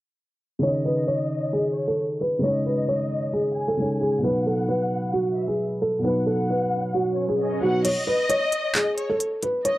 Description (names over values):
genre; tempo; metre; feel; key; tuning
hip hop, trap; 133 BPM; 4/4; half-time; unclear; A4 = 440 Hz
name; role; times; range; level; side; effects
felt-muted upright piano; melody; 0.6-9.8 s; F#4 to C#5; -24 LUFS; equal; low-pass filter
dark studio violin section; second line; 0.6-9.8 s; C#5 to G#5; -30 LUFS; left 2 dB; tape echo
dark baby grand piano; accompaniment; 0.6-7.9 s; B2 to C#5; -26 LUFS; equal; low-pass filter
swell; sound effects; 6.8-7.8 s; none; -33 LUFS; right 1 dB; none
trap drum kit; drums; 7.8-9.8 s; crash cymbal, handclaps, hi-hat; -28 LUFS; equal; none
room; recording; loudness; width
light reverb; dry, gritty hardware recording, cassette tape, low-pass filter; -21 LUFS; side -16 dB against mid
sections
0.6-7.8 A section; 7.8-9.8 B section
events
filter sweep 0.6-7.8; swell 6.8-7.8; kick muted 7.8-9.8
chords
0.6 C#sus2; 4.2 B; 7.8 N.C.